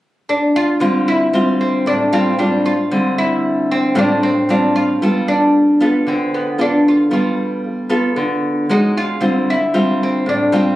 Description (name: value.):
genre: bossa nova.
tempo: 114 BPM.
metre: 4/4.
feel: straight.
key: D minor.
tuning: A4 = 440 Hz.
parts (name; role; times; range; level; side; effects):
oud; melody; 0.3-10.8 s; B3 to F4; -16 LUFS; equal; none.
nylon-string guitar; accompaniment; 0.8-10.8 s; A2 to A4; -16 LUFS; equal; none.
room: light reverb.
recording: recorded on a phone in the room, club reverb, compression.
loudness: -13 LUFS.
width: side -15 dB against mid.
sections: 0.8-10.8 A section.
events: none.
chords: 0.0 N.C.; 0.8 Dm11; 5.0 G9; 8.7 Ebm11; 9.2 Dm11.